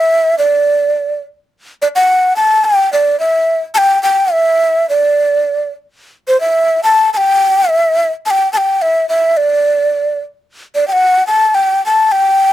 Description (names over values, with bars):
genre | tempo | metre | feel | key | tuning
andean folk | 107 BPM | 2/4 | straight | E minor | A4 = 437 Hz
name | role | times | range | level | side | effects
breathy mellow large quena | solo | 0.0-12.5 s | C5 to A5 | -10 LUFS | equal | none
room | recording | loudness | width
little or no reverb | close, detailed microphones | -10 LUFS | side -13 dB against mid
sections
0.0-3.8 A section; 3.8-12.5 A section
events
none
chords
none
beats
| 0.39 0.95 | 1.52 2.08 | 2.64 3.20 | 3.76 4.33 | 4.89 5.45 | 6.01 6.57 | 7.13 7.69 | 8.24 8.80 | 9.36 9.92 | 10.47 11.03 | 11.58 12.14